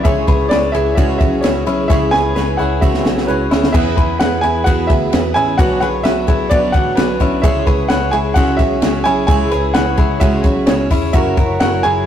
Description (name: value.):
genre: jangly indie pop.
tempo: 130 BPM.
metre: 4/4.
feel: straight.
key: B dorian.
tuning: A4 = 440 Hz.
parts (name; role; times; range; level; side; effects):
warm upright piano; melody; 0.0-12.1 s; B4 to G#5; -19 LUFS; right 1 dB; digital delay.
chorused retro synth keys; accompaniment; 0.0-12.1 s; B3 to E5; -24 LUFS; right 2 dB; tremolo.
picked steel-string acoustic guitar; accompaniment; 0.0-12.1 s; B2 to C#5; -23 LUFS; right 3 dB; none.
string machine, violins; sustained chords; 0.0-12.1 s; C#3 to C#5; -29 LUFS; equal; none.
direct-recorded clean electric guitar; arpeggios; 0.0-12.1 s; B3 to B4; -20 LUFS; left 3 dB; digital delay.
compact cocktail drum kit; drums; 0.0-11.9 s; crash cymbal, hi-hat, kick drum, ride cymbal, snare drum; -16 LUFS; equal; none.
vintage muted picked electric bass; bass; 0.1-12.0 s; E1 to E2; -22 LUFS; equal; none.
room: moderate stone room reverb, RT60 1.3 s.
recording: rough rehearsal-room recording, tube saturation.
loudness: -12 LUFS.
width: side -10 dB against mid.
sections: 0.0-3.7 A section; 3.7-12.1 A section.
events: drum fill 1.9-3.7.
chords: 0.0 C#m; 3.7 Bmadd9; 7.4 C#m; 11.1 F#7.